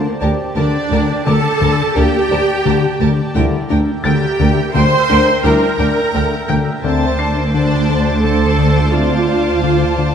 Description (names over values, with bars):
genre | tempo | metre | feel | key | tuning
cinematic, suspense film score | 86 BPM | 5/4 | straight | D minor | A4 = 439 Hz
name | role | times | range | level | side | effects
bubbling stepped-filter texture | sustained chords | 0.0-10.1 s | G4 to A5 | -27 LUFS | equal | chorus, built-in reverb
mellow French horn section | sustained chords | 0.0-9.2 s | G3 to Bb4 | -24 LUFS | left 3 dB | none
fat analog bass | riff | 0.0-10.1 s | D3 to D4 | -19 LUFS | left 6 dB | none
clear symphonic violin section | second line | 0.2-10.1 s | Bb4 to A5 | -24 LUFS | equal | none
clear symphonic double bass section | bass | 0.2-10.1 s | D2 | -19 LUFS | right 2 dB | none
rich symphonic cello section | bass | 0.2-10.1 s | D2 | -21 LUFS | right 2 dB | none
clear concert grand piano | texture | 0.2-10.1 s | G4 to C7 | -30 LUFS | equal | none
rich symphonic violin section | melody | 0.6-10.1 s | D5 to C6 | -25 LUFS | equal | none
warm symphonic viola section | accompaniment | 0.6-10.1 s | D4 to C5 | -17 LUFS | right 2 dB | none
rich symphonic violin section | texture | 6.8-10.1 s | C6 to A6 | -29 LUFS | left 1 dB | none
room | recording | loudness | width
wet scoring stage reverb, RT60 1.7 s | dark, warm production | -12 LUFS | side -8 dB against mid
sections
0.0-10.1 A section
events
none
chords
0.0 Gmadd9/D; 3.4 Em7b5/D; 6.8 Dm7